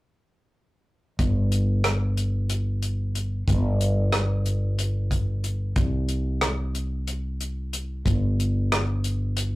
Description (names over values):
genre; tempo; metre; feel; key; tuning
progressive instrumental, band music in an uneven meter; 183 BPM (eighths); 7/8; straight; unclear; A4 = 440 Hz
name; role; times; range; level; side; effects
fretless electric bass; bass; 1.2-9.6 s; G1 to C2; -24 LUFS; equal; none
warm soul drum kit; drums; 1.2-9.5 s; hi-hat, kick drum, rim click; -26 LUFS; equal; none
room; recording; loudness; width
wet studio ambience, RT60 0.5 s; rough rehearsal-room recording, tube saturation; -23 LUFS; side -18 dB against mid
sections
1.2-9.6 A section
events
none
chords
none